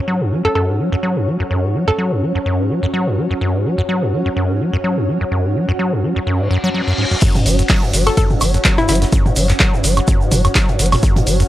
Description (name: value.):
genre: acid house.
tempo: 126 BPM.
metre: 4/4.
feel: swing 56% on 16ths.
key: unclear.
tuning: A4 = 439 Hz.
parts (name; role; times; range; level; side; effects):
granular cloud pad; texture; 0.0-11.5 s; C#4 to F#5; -23 LUFS; equal; built-in reverb, sidechain pumping.
acid bass, square; riff; 0.1-11.4 s; F#2 to F#3; -18 LUFS; equal; tube saturation, sidechain pumping, analog delay.
hollow square pluck; melody; 0.4-2.2, 8.1-9.0 s; E4 to A4; -21 LUFS; left 1 dB; chorus, analog delay.
reverse cymbal; sound effects; 6.5-7.2 s; none; -23 LUFS; left 2 dB; none.
big rock drum kit; drums; 7.2-11.4 s; hi-hat, shaker, snare drum; -29 LUFS; equal; none.
electronic kick drum; drums; 7.2-11.1 s; none; -15 LUFS; equal; none.
punchy analog drum machine; drums; 7.2-11.5 s; crash cymbal, handclaps, hi-hat, toms, woodblock; -19 LUFS; right 1 dB; none.
egg shaker; percussion; 7.2-11.5 s; none; -28 LUFS; right 2 dB; none.
saturated sub bass; bass; 7.5-11.4 s; F#1; -17 LUFS; equal; tube saturation, sidechain pumping.
room: light reverb, digital ambience.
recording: dry, gritty hardware recording.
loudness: -14 LUFS.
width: side -14 dB against mid.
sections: 0.0-7.2 A section; 7.2-11.5 B section.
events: reverse cymbal 6.5-7.2; drop 7.2-11.5.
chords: 0.0 F#5.